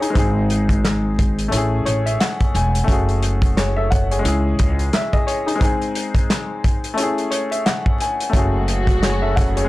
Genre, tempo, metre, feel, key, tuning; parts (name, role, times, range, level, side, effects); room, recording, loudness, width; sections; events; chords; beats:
hip hop, boom-bap hip-hop; 88 BPM; 4/4; swing 59% on 16ths; A4 = 440 Hz
warm upright piano; accompaniment; 0.0-9.7 s; G#3 to G#5; -21 LUFS; left 2 dB; high-pass filter, low-pass filter
warm soul drum kit; drums; 0.0-9.7 s; handclaps, hi-hat, kick drum, snare drum; -20 LUFS; equal
upright bass; bass; 0.2-9.7 s; E1 to C#2; -20 LUFS; equal; transformer saturation
warm studio string section; sustained chords; 8.3-9.7 s; C#3 to G#4; -25 LUFS; right 1 dB; high-pass filter, low-pass filter
light reverb; blown-out, overdriven recording, vinyl crackle, overdrive; -16 LUFS; side -18 dB against mid
0.0-9.7 A section
0.2 G#; 1.5 Amaj7; 2.9 F#madd9; 4.2 C#m; 5.6 G#; 7.0 Amaj7; 8.3 F#madd9
| 0.16 0.84 1.52 2.20 | 2.88 3.56 4.25 4.93 | 5.61 6.29 6.97 7.66 | 8.34 9.02